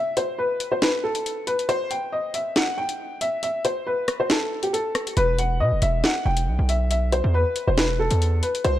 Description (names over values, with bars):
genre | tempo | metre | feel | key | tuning
hip hop, drill | 138 BPM | 4/4 | half-time | E harmonic minor | A4 = 440 Hz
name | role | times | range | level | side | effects
warm upright piano | melody | 0.0-8.8 s | G4 to G5 | -24 LUFS | left 1 dB | none
drill drum kit | drums | 0.2-8.8 s | hi-hat, rim click, snare drum | -26 LUFS | equal | vintage 12-bit sampler grit
distorted 808-style bass | bass | 5.2-8.8 s | E1 to B2 | -21 LUFS | right 1 dB | distortion
room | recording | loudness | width
light reverb, digital ambience | dark, warm production | -21 LUFS | side -13 dB against mid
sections
0.0-8.8 A section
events
break 0.0-5.2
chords
0.0 N.C.; 5.2 E5